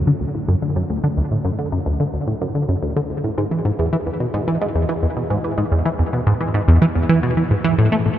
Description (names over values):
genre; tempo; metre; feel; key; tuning
ambient; 109 BPM; 4/4; straight; unclear; A4 = 440 Hz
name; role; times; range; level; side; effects
tight sequenced synth; solo; 0.0-8.1 s; D2 to A3; -17 LUFS; equal; chorus, phaser, tape echo
room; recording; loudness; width
wet huge ambient reverb, RT60 9.3 s; in a vast, echoing space; -17 LUFS; side -11 dB against mid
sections
0.0-8.2 A section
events
none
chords
none